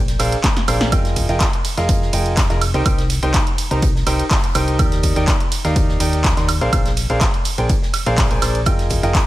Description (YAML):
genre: piano house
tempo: 124 BPM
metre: 4/4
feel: straight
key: F dorian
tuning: A4 = 436 Hz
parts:
  - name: hollow-body short-scale fingered electric bass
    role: bass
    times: 0.0-9.2 s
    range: F1 to Eb2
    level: -21 LUFS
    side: equal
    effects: sidechain pumping
  - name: loose indie drum kit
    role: drums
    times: 0.1-9.3 s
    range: hi-hat, snare drum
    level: -33 LUFS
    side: right 3 dB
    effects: high-pass filter on hats, high-pass filter on snare, high-pass filter on room
  - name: punchy analog drum machine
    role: drums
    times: 0.1-9.3 s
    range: handclaps, hi-hat, ride cymbal, snare drum, woodblock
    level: -22 LUFS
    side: right 2 dB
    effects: none
  - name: clear concert grand piano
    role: riff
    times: 0.2-9.2 s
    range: D4 to C6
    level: -22 LUFS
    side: right 1 dB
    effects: sidechain pumping, digital delay
  - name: electronic kick drum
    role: drums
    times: 0.4-9.2 s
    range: none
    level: -18 LUFS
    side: equal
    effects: none
room: small room ambience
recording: none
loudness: -15 LUFS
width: side -16 dB against mid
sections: 0.0-9.3 A section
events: drum fill 0.4-0.9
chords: 0.0 Bb9; 0.9 Fm11; 2.6 Cm7; 4.8 Ebmaj7; 6.5 Bb9; 8.7 Fm11